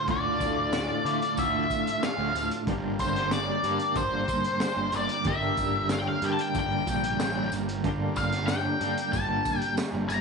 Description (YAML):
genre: psychedelic rock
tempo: 93 BPM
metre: 4/4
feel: straight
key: unclear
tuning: A4 = 440 Hz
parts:
  - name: octave-fuzz lead guitar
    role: melody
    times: 0.0-10.2 s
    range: C5 to Bb5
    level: -28 LUFS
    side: left 2 dB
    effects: wah, distortion, slapback echo
  - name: combo organ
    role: sustained chords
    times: 0.0-10.2 s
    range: F3 to Bb4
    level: -39 LUFS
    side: right 14 dB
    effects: none
  - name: clean electric guitar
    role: riff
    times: 0.0-10.2 s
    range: D2 to G4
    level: -30 LUFS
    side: right 1 dB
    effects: tremolo, double-tracked left and right
  - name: fuzz picked electric bass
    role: bass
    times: 0.1-10.2 s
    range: G1 to D3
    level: -34 LUFS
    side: equal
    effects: overdrive
  - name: crunchy breakbeat drum kit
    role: drums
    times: 0.1-10.2 s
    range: hi-hat, kick drum, snare drum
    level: -34 LUFS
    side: equal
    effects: none
  - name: tambourine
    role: percussion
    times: 0.1-10.2 s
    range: none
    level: -46 LUFS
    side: right 15 dB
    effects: none
room: light reverb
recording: 1960s-style stereo, nothing above 10.5 kHz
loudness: -25 LUFS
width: side -4 dB against mid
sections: 0.0-10.2 A section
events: none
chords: 0.0 Dm; 2.7 Gm